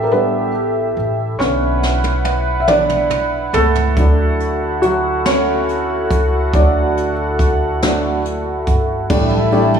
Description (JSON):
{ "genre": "six-eight pop ballad", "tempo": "47 BPM (dotted quarters)", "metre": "6/8", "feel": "straight", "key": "D major", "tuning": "A4 = 441 Hz", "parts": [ { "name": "felt-muted upright piano", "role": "accompaniment", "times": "0.0-9.8 s", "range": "D3 to E5", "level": "-18 LUFS", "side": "equal", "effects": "none" }, { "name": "warm analog pad", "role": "sustained chords", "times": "0.0-9.8 s", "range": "E4 to A5", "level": "-20 LUFS", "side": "right 1 dB", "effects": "chorus" }, { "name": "upright bass", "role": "bass", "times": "0.0-9.8 s", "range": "G1 to D2", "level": "-20 LUFS", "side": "equal", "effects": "none" }, { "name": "jazz brush drum kit", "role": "drums", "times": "1.4-9.7 s", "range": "crash cymbal, hi-hat, kick drum, ride cymbal, snare drum, toms", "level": "-21 LUFS", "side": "equal", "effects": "none" }, { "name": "mellow French horn section", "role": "second line", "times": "9.1-9.8 s", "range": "E4", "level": "-21 LUFS", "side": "right 1 dB", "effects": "none" }, { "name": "fingerpicked steel-string acoustic guitar", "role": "arpeggios", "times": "9.1-9.8 s", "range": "G3 to E4", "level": "-22 LUFS", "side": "right 9 dB", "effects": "none" } ], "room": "light reverb", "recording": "small room reverb", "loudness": "-14 LUFS", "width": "side -7 dB against mid", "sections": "0.0-9.1 A section", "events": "felt piano solo 0.0-9.1; drum fill 1.4-4.0", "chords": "0.0 A7sus4; 1.4 Bmadd9; 4.0 D; 9.1 A7sus4" }